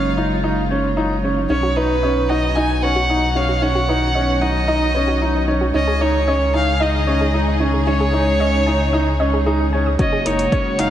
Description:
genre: piano and strings electronica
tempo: 113 BPM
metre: 4/4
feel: straight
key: F# major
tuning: A4 = 440 Hz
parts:
  - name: rich violin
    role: melody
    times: 0.0-10.9 s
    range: B4 to G#5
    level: -22 LUFS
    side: right 1 dB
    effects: low-pass filter, diffuse ambient delay, shimmer reverb
  - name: dark studio string section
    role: sustained chords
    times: 0.0-10.9 s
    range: B2 to G#4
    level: -24 LUFS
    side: left 2 dB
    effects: sidechain pumping, shimmer reverb
  - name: clear upright piano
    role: riff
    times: 0.0-10.9 s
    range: C#4 to D#4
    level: -21 LUFS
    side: right 1 dB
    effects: lush chorus, low-pass filter, diffuse ambient delay, shimmer reverb
  - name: warm sub bass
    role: bass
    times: 0.0-10.9 s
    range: F#1 to C#2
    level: -21 LUFS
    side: equal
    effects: sidechain pumping
  - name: soft round pluck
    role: arpeggios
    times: 1.5-10.9 s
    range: D#4 to D#6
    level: -26 LUFS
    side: right 1 dB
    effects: chorus, sidechain pumping, diffuse ambient delay, shimmer reverb
  - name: electronic hi-hat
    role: drums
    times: 10.0-10.9 s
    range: none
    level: -32 LUFS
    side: left 1 dB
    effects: overdrive
  - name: electronic kick drum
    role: drums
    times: 10.0-10.6 s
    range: none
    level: -19 LUFS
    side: equal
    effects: overdrive
room: wet plate reverb, RT60 2.3 s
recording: dreamy mix soaked in reverb, nothing above 10.8 kHz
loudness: -15 LUFS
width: side -11 dB against mid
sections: 0.0-10.0 A section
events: none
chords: 0.0 F#add9; 1.5 B; 5.7 C#sus2; 10.0 F#add9

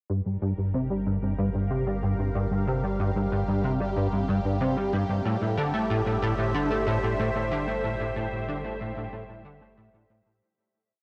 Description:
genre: ambient, sequencer-driven space music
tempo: 93 BPM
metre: 4/4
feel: straight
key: G dorian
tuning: A4 = 440 Hz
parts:
  - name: phased analog pad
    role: sustained chords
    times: 0.1-10.4 s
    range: G3 to F5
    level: -35 LUFS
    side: equal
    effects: phaser, chorus
  - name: plucky analog bass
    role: riff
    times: 0.1-10.4 s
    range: G2 to A3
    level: -28 LUFS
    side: equal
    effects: ensemble chorus, tape echo
  - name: warm sub bass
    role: bass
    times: 0.1-10.4 s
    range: G1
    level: -39 LUFS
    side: equal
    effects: none
room: moderate huge ambient reverb, RT60 8.1 s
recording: worn, warbling old tape, cassette tape, warbly pitch drift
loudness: -27 LUFS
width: mono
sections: 0.1-10.4 A section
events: fade-in on analog synth pad 0.1-10.4; fade-out 7.0-10.4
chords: 0.1 Gm7; 5.3 Am7/G

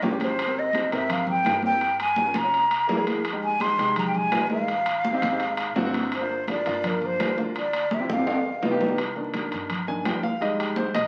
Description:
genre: Afro-Cuban jazz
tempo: 168 BPM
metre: 4/4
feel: straight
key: C minor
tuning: A4 = 440 Hz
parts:
  - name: clear concert grand piano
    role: accompaniment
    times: 0.0-11.1 s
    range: Eb3 to Ab5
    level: -31 LUFS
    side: equal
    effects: none
  - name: upright bass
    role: bass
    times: 0.0-11.1 s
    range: G1 to Ab2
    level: -42 LUFS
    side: equal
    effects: none
  - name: congas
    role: percussion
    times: 0.0-11.1 s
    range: none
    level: -33 LUFS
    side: equal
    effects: none
  - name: timbales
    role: percussion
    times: 0.0-11.1 s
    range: none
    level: -32 LUFS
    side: equal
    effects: none
  - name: breathy mellow silver concert flute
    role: melody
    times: 0.2-8.8 s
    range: Bb4 to C6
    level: -27 LUFS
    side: equal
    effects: none
room: wet large studio reverb, RT60 1.0 s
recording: very old 78 rpm record, vinyl crackle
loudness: -25 LUFS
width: mono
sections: 0.0-9.0 A section; 9.0-11.1 B section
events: drum fill 8.1-9.0; grand piano solo 9.0-11.1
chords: 0.4 Abmaj9; 1.8 Gm7b5; 2.5 C7b13; 3.3 Fm9; 4.7 Am7b5; 5.4 Ab7#11; 6.1 Gm7; 7.5 Dm11; 8.3 Gaug7; 9.0 Cm9; 10.4 Fm7

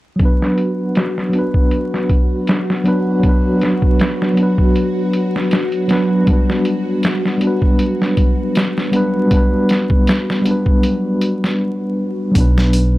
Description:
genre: trip hop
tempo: 79 BPM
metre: 4/4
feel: swing 55% on 16ths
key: B minor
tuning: A4 = 440 Hz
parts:
  - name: mellow tine electric piano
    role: accompaniment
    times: 0.2-13.0 s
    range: F#3 to B4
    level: -16 LUFS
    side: equal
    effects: tremolo, tape echo
  - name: string machine, cellos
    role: sustained chords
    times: 0.2-12.4 s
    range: F#4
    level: -23 LUFS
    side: left 1 dB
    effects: phaser, ensemble chorus
  - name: boom bap sampler-style drum kit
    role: drums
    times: 0.2-12.9 s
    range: hi-hat, kick drum, snare drum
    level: -16 LUFS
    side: equal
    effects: low-pass filter on hats, low-pass filter on kick, low-pass filter on snare
  - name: upright bass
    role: bass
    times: 12.4-13.0 s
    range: B1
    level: -14 LUFS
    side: equal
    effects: none
room: little or no reverb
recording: dry, gritty hardware recording, transformer saturation, vinyl crackle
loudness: -13 LUFS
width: side -17 dB against mid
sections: 0.2-12.4 A section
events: break 11.6-12.4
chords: 0.2 Bm; 6.3 G; 12.4 Bm

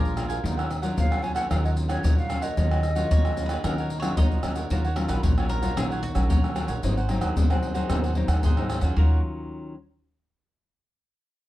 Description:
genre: samba and choro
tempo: 113 BPM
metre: 4/4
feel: straight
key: Eb minor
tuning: A4 = 441 Hz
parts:
  - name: bowl-back mandolin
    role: second line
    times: 0.0-9.2 s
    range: Gb4 to Eb5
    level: -38 LUFS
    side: equal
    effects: none
  - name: cavaquinho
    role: accompaniment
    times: 0.0-9.2 s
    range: D4 to Ab5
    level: -35 LUFS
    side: right 4 dB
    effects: none
  - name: nylon-string guitar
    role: accompaniment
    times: 0.0-9.7 s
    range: Ab2 to F4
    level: -31 LUFS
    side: left 2 dB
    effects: none
  - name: upright bass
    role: bass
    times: 0.0-9.2 s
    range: Ab1 to Eb3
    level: -26 LUFS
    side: equal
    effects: none
  - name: maracas, pandeiro, tamborim and surdo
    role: percussion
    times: 0.1-9.1 s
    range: none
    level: -25 LUFS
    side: equal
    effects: none
  - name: mellow hollow jazz flute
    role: melody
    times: 1.0-4.2 s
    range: Db5 to Ab5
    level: -31 LUFS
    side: right 1 dB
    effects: none
room: light reverb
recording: dark, warm production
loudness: -22 LUFS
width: side -15 dB against mid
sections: 0.0-4.7 A section; 4.7-9.0 B section; 9.0-11.1 C section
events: none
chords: 0.4 Ebm9; 6.8 Ab7; 9.0 Ebm9

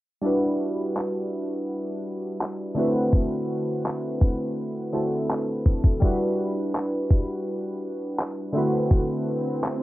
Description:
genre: contemporary R&B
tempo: 83 BPM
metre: 4/4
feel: straight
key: E minor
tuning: A4 = 440 Hz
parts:
  - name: warm analog keys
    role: accompaniment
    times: 0.2-9.8 s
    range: D3 to B4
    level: -25 LUFS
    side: equal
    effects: chorus, cassette tape, plate reverb
  - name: dusty soul sampler-style drum kit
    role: drums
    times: 1.0-9.8 s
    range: handclaps, kick drum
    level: -21 LUFS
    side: equal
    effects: cassette tape
  - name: swell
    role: sound effects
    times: 9.2-9.8 s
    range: none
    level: -34 LUFS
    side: left 1 dB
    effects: none
room: moderate booth ambience, RT60 0.2 s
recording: home recording on cassette, low-pass filter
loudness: -23 LUFS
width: side -16 dB against mid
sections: 0.2-9.8 A section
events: swell 9.2-9.8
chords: 0.2 Em7; 2.8 D13; 6.0 Em7; 8.6 D13

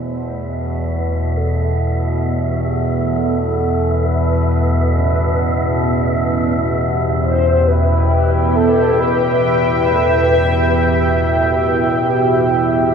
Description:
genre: dark ambient drone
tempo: free time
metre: none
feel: none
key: E minor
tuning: A4 = 440 Hz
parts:
  - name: mellow horn-like synth lead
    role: melody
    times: 0.0-12.2 s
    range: G4 to C5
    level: -21 LUFS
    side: equal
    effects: ensemble chorus, analog delay
  - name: bronze singing bowl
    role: arpeggios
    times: 0.0-10.4 s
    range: A2 to E4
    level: -30 LUFS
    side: right 3 dB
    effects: none
  - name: overtone-sweeping drone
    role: drone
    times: 0.0-12.9 s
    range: E2 to B2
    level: -16 LUFS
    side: equal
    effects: chorus, built-in reverb, phaser
  - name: wind-like tuned noise texture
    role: texture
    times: 0.2-12.9 s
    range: E5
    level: -26 LUFS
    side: right 2 dB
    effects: built-in reverb
  - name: sweeping resonant pad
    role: sustained chords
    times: 5.9-12.9 s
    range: E4 to G5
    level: -18 LUFS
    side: right 1 dB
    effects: chorus
room: wet echo chamber reverb, RT60 2.2 s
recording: echo-heavy mix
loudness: -14 LUFS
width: side -6 dB against mid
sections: 0.0-12.9 A section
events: fade-in on soft synth lead 0.0-12.9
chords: 0.0 Em

